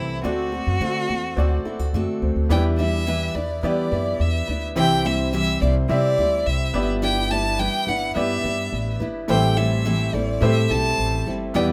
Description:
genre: acoustic pop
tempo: 106 BPM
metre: 4/4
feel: straight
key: E minor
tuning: A4 = 439 Hz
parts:
  - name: rich violin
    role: melody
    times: 0.0-11.7 s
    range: E4 to A5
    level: -27 LUFS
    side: equal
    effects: none
  - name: bright upright piano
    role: accompaniment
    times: 0.0-11.7 s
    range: A3 to E5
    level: -30 LUFS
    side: equal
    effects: none
  - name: picked steel-string acoustic guitar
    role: accompaniment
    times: 0.0-11.7 s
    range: A2 to C5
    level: -28 LUFS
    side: equal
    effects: none
  - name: nylon-string guitar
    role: arpeggios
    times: 0.0-2.6, 11.6-11.7 s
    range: E3 to G4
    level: -34 LUFS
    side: equal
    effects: none
  - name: upright bass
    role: bass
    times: 0.0-11.7 s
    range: G1 to E3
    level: -26 LUFS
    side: equal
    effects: none
room: light reverb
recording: none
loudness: -22 LUFS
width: mono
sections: 0.0-2.5 A section; 2.5-11.7 B section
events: none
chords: 0.2 D7; 2.5 Em7; 4.8 C; 6.7 G6; 9.3 Am7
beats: | 0.24 0.81 1.37 1.94 | 2.50 3.07 3.64 4.20 | 4.77 5.33 5.90 6.46 | 7.03 7.59 8.16 8.72 | 9.29 9.86 10.42 10.99 | 11.55

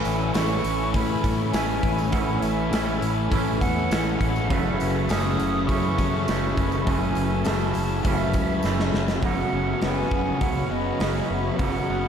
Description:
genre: rock, shoegaze and dream pop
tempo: 102 BPM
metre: 4/4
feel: straight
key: unclear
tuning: A4 = 439 Hz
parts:
  - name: hollow concert flute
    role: melody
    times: 0.0-12.1 s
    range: D#5 to D#6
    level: -31 LUFS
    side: right 1 dB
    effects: ping-pong delay
  - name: soft additive organ-like pad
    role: sustained chords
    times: 0.0-12.1 s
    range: C#4 to B5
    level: -35 LUFS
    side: left 1 dB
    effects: ensemble chorus, built-in reverb
  - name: fingerpicked twelve-string acoustic guitar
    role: arpeggios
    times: 0.0-12.1 s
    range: E3 to C#4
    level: -35 LUFS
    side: left 6 dB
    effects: analog chorus, ping-pong delay
  - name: thick fuzz guitar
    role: riff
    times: 0.0-12.1 s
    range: F#2 to A3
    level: -29 LUFS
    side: left 7 dB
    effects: distortion, wide subtle chorus
  - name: twangy electric guitar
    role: riff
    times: 0.0-12.1 s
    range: F#2 to E4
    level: -27 LUFS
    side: right 6 dB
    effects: reverse reverb
  - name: fingered electric bass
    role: bass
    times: 0.0-12.1 s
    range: F#1 to A2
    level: -29 LUFS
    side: equal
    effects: none
  - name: gated 80s drum kit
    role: drums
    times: 0.0-11.7 s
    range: hi-hat, kick drum, snare drum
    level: -27 LUFS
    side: equal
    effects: none
  - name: tambourine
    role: percussion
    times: 0.1-9.2 s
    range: none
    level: -49 LUFS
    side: right 8 dB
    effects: none
room: wet huge ambient reverb, RT60 7.6 s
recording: dreamy mix soaked in reverb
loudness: -21 LUFS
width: side -8 dB against mid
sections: 0.0-9.2 A section; 9.2-12.1 B section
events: drum fill 8.6-9.2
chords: 0.0 Amaj7; 4.5 F#m7; 9.2 F#sus4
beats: 0.35 0.94 1.54 | 2.13 2.72 3.32 3.91 | 4.50 5.09 5.68 6.28 | 6.87 7.46 8.05 8.64 | 9.23 9.82 10.41 11.01 | 11.60

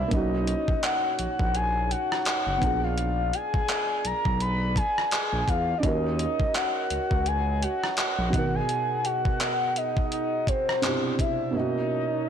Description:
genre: contemporary R&B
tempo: 84 BPM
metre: 4/4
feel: swing 58% on 16ths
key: B major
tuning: A4 = 445 Hz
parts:
  - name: soft octave-layered synth lead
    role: melody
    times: 0.0-12.3 s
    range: C5 to B5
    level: -27 LUFS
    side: left 2 dB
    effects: chorus, phaser, digital delay
  - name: felt-muted upright piano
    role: accompaniment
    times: 0.0-12.3 s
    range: B2 to A#4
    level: -32 LUFS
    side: right 5 dB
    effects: none
  - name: glass harmonica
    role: sustained chords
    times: 0.0-12.3 s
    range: D#4 to B5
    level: -37 LUFS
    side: equal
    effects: none
  - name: smooth gliding synth bass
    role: bass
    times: 0.0-8.6 s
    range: F#1 to E2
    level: -28 LUFS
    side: equal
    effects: none
  - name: gated 80s digital drum machine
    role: drums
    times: 0.1-11.4 s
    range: handclaps, hi-hat, kick drum, rim click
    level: -28 LUFS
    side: equal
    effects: gated reverb
room: light reverb, digital ambience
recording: blown-out, overdriven recording, overdrive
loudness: -23 LUFS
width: side -8 dB against mid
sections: 0.0-12.3 A section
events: none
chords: 0.1 Bmaj9; 2.6 A#7b9; 5.8 D#m7; 8.3 G#m7; 10.8 Cmaj9; 11.5 Bmaj9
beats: | 0.12 0.83 1.55 2.26 | 2.97 3.69 4.40 5.12 | 5.83 6.55 7.26 7.97 | 8.69 9.40 10.12 10.83 | 11.55 12.26

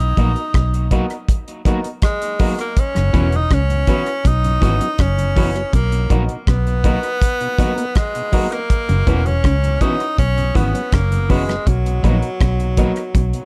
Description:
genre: roots reggae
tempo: 81 BPM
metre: 4/4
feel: straight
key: unclear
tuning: A4 = 439 Hz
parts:
  - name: edgy tenor saxophone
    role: melody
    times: 0.0-13.4 s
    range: F#3 to D#4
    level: -25 LUFS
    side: equal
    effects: tape echo
  - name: electric guitar through a small old amp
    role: riff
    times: 0.0-13.3 s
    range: E2 to C#3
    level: -30 LUFS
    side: equal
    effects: none
  - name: vintage muted fingered electric bass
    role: bass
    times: 0.0-13.3 s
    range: E1 to C#2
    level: -20 LUFS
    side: equal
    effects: none
  - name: electric guitar at the edge of break-up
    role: accompaniment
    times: 0.2-12.9 s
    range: E3 to F#4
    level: -28 LUFS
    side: equal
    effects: tape echo
  - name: bright upright piano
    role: stabs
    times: 0.2-13.0 s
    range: B3 to B4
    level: -29 LUFS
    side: equal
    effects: none
  - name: damped 70s drum kit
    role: drums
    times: 0.2-13.4 s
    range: hi-hat, kick drum, rim click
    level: -20 LUFS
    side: equal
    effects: none
  - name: mellow tonewheel organ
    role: accompaniment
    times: 3.0-13.4 s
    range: F#2 to B3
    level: -30 LUFS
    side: equal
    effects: none
room: little or no reverb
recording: echo-heavy mix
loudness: -18 LUFS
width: mono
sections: 0.0-13.4 A section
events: none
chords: 0.0 Bmaj7; 2.8 F#7sus4; 5.7 Bmaj7; 8.7 F#7sus4; 11.7 Bmaj7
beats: 0.54 1.28 2.02 | 2.77 3.51 4.25 4.99 | 5.73 6.47 7.22 7.96 | 8.70 9.44 10.18 10.93 | 11.67 12.41 13.15

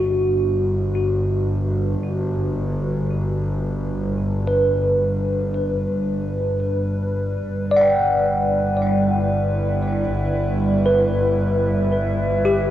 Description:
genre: ambient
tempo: free time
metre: none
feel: none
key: G major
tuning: A4 = 440 Hz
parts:
  - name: warbly tape-like pad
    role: sustained chords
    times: 0.0-12.7 s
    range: G3 to E5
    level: -26 LUFS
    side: right 1 dB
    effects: chorus, built-in reverb, phaser
  - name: bell-like tine electric piano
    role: arpeggios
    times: 0.0-12.7 s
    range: F#4 to G5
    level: -21 LUFS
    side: equal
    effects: phaser, ping-pong delay
  - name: clear studio double bass section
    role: bass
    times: 0.0-12.7 s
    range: G1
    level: -23 LUFS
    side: equal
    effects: none
room: wet concert hall reverb, RT60 2.1 s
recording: worn, warbling old tape, cassette tape, warbly pitch drift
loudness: -18 LUFS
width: side -12 dB against mid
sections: 0.0-12.7 A section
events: fade-in on ambient pad 0.0-12.7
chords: 0.0 Gmaj7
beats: free time

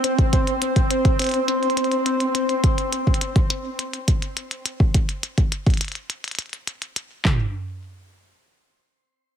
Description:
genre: IDM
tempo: 104 BPM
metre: 4/4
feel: straight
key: unclear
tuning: A4 = 440 Hz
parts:
  - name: electronic hi-hat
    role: drums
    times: 0.0-7.1 s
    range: none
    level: -27 LUFS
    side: left 1 dB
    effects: none
  - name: pulsing gated texture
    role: texture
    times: 0.0-2.6 s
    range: C4 to C5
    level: -22 LUFS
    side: left 1 dB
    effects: chorus, built-in reverb, shimmer reverb
  - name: glitchy drum kit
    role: drums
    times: 0.2-7.4 s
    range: handclaps, kick drum, toms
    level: -19 LUFS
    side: equal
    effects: none
room: moderate lush hall reverb, RT60 2.0 s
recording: heavily compressed radio sound, multiband compression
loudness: -20 LUFS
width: side -9 dB against mid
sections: 0.0-7.3 A section; 7.3-9.4 B section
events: none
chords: none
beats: | 0.33 0.91 1.48 2.06 | 2.64 3.21 3.79 4.37 | 4.94 5.52 6.10 6.67 | 7.25

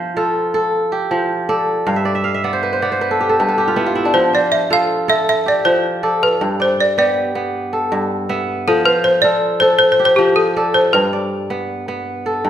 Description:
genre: west african traditional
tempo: 106 BPM (dotted quarters)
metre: 12/8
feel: straight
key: F lydian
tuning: A4 = 440 Hz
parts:
  - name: kora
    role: arpeggios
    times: 0.0-12.5 s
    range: G2 to F5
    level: -17 LUFS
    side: equal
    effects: none
  - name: balafon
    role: melody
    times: 4.1-12.5 s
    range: G4 to F5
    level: -14 LUFS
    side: equal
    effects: none
room: wet recital hall reverb, RT60 1.3 s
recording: none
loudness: -14 LUFS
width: side -10 dB against mid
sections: 0.0-12.5 A section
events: kora fill 1.9-4.1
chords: 0.0 F; 1.9 G; 4.1 F; 6.4 G; 8.7 F; 10.9 G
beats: 0.17 0.74 1.30 | 1.87 2.44 3.01 3.58 | 4.14 4.71 5.28 5.84 | 6.41 6.98 7.54 8.11 | 8.68 9.24 9.81 10.38 | 10.94 11.51 12.07

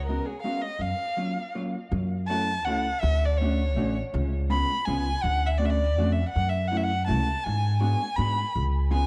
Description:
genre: musette waltz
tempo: 163 BPM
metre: 3/4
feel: rubato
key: F# minor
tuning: A4 = 440 Hz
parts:
  - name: warm violin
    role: melody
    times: 0.0-9.1 s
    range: G#4 to B5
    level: -31 LUFS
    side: equal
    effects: analog delay
  - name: upright bass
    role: bass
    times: 0.0-9.1 s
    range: A1 to G#2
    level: -28 LUFS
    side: equal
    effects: none
  - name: hollow-body jazz guitar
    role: accompaniment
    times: 0.1-9.1 s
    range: F#3 to F#4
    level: -34 LUFS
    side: equal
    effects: analog delay
room: light reverb, small room ambience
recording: echo-heavy mix, cassette tape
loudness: -26 LUFS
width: mono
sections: 0.0-1.9 A section; 1.9-9.1 B section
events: none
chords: 0.0 C#7sus4; 0.8 F#maj7; 1.9 F#m7; 3.0 Dmaj7; 4.1 C#7; 5.2 Dmaj7; 6.3 F#m7; 7.5 G#m7b5; 8.5 C#7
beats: 0.07 0.43 | 0.80 1.17 1.54 | 1.92 2.30 2.67 | 3.04 3.41 3.77 | 4.14 4.50 4.87 | 5.24 5.61 5.98 | 6.35 6.72 7.09 | 7.46 7.82 8.18 | 8.55 8.92

